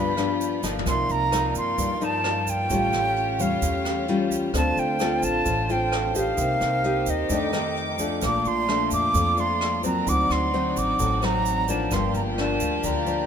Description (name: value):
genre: bossa nova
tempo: 130 BPM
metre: 4/4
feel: straight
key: unclear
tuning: A4 = 438 Hz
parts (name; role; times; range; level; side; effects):
- silver concert flute; melody; 0.0-13.3 s; Eb5 to D6; -25 LUFS; right 2 dB; none
- nylon-string guitar; accompaniment; 0.0-13.3 s; F2 to A4; -27 LUFS; left 3 dB; none
- rich studio string section; sustained chords; 0.0-13.3 s; A3 to D6; -33 LUFS; left 2 dB; none
- upright bass; bass; 0.0-13.3 s; G1 to G2; -30 LUFS; equal; none
- jazz brush drum kit; drums; 0.2-13.2 s; hi-hat, kick drum, rim click, snare drum, toms; -33 LUFS; equal; none
- egg shaker; percussion; 0.2-13.3 s; none; -35 LUFS; right 8 dB; none
- vibraphone with medium mallets; accompaniment; 0.8-13.3 s; Bb3 to D6; -31 LUFS; right 2 dB; none
room: light reverb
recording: minimal, uncompressed stereo recording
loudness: -21 LUFS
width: side -8 dB against mid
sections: 0.9-13.3 A section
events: drum fill 0.6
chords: 0.0 G7; 0.9 Cm11; 2.7 A7b13; 4.5 Dm7; 6.4 Cm7; 7.3 F13; 8.2 Bbmaj7; 10.1 D7b9; 11.9 Gm7